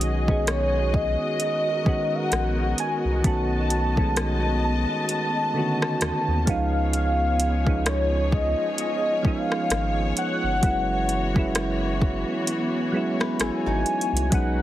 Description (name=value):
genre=contemporary R&B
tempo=65 BPM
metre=4/4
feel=swing 58% on 16ths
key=B major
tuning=A4 = 440 Hz
part: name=warm velvety synth lead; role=melody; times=0.0-14.6 s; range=C#5 to A5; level=-27 LUFS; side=equal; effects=chorus, tape echo
part: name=soft electric-piano-like synth keys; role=accompaniment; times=0.0-14.6 s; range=D3 to G#4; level=-28 LUFS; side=right 2 dB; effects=chorus
part: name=muted studio string section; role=sustained chords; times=0.0-14.6 s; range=E3 to A5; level=-30 LUFS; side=left 2 dB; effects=sidechain pumping
part: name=warm sub bass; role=bass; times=0.0-14.6 s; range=F#1 to D#2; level=-26 LUFS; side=equal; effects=none
part: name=smooth R&B drum kit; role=drums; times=0.0-14.6 s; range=hi-hat, kick drum, rim click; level=-25 LUFS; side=equal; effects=overdrive
part: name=flamenco guitar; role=arpeggios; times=13.2-14.3 s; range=D#4 to B4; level=-32 LUFS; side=left 7 dB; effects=none
room=light reverb, digital ambience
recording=heavily compressed radio sound, multiband compression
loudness=-21 LUFS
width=side -13 dB against mid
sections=0.0-14.3 A section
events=none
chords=0.0 B6; 3.2 B7; 6.5 C#7; 10.6 F#7sus4